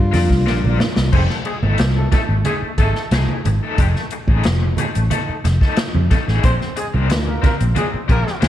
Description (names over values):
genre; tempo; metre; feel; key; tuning
funk; 90 BPM; 4/4; straight; F mixolydian; A4 = 440 Hz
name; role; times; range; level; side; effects
breathy alto saxophone; melody; 0.0-0.8 s; F4; -25 LUFS; left 2 dB; none
vintage muted fingered electric bass; bass; 0.0-8.5 s; F1 to G2; -18 LUFS; equal; none
crunchy overdriven guitar; accompaniment; 0.1-8.5 s; A3 to D5; -24 LUFS; left 4 dB; tremolo
mellow tonewheel organ; stabs; 0.1-0.9 s; G3 to F4; -26 LUFS; right 1 dB; chorus vibrato, slow rotary speaker
swinging big-band drum kit; drums; 0.1-8.5 s; crash cymbal, hi-hat, kick drum, snare drum; -20 LUFS; equal; none
congas; percussion; 0.1-8.5 s; none; -26 LUFS; right 5 dB; none
warm horn section; second line; 1.1-8.4 s; G#3 to C5; -26 LUFS; equal; none
room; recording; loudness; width
light reverb; dark, warm production; -15 LUFS; side -12 dB against mid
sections
0.0-1.1 A section; 1.1-8.5 B section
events
drum fill 0.5-1.1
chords
0.0 C9sus4; 1.1 F7#9; 6.4 Bb9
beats
0.47 | 1.14 1.80 2.46 3.13 | 3.79 4.45 5.12 5.78 | 6.44 7.11 7.77 8.43